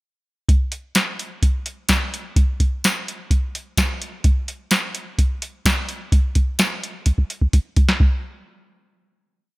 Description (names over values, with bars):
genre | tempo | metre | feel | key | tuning
rock | 128 BPM | 4/4 | straight | none | none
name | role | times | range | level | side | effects
soft vintage rhythm box | drums | 0.5-8.1 s | hi-hat, kick drum, snare drum, tambourine | -17 LUFS | equal | none
room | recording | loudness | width
little or no reverb | none | -18 LUFS | side -22 dB against mid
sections
0.5-8.0 pre-chorus; 8.0-9.6 final hit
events
drum fill 7.1-8.0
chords
none